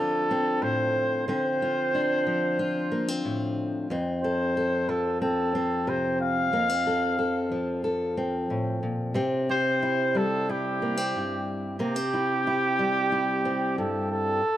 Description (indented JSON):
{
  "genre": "folk",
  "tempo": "91 BPM",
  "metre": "4/4",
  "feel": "straight",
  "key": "unclear",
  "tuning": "A4 = 442 Hz",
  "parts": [
    { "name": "mellow trumpet", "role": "melody", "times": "0.0-14.6 s", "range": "G4 to F5", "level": "-26 LUFS", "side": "right 1 dB", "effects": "tape echo" },
    { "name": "fingerpicked steel-string acoustic guitar", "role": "accompaniment", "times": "0.0-14.4 s", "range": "F2 to A4", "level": "-27 LUFS", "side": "left 1 dB", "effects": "none" }
  ],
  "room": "light reverb",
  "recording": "dark, warm production",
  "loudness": "-24 LUFS",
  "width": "side -12 dB against mid",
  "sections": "0.0-14.4 A section",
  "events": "none",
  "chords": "0.0 Dm7; 3.9 F; 9.2 C"
}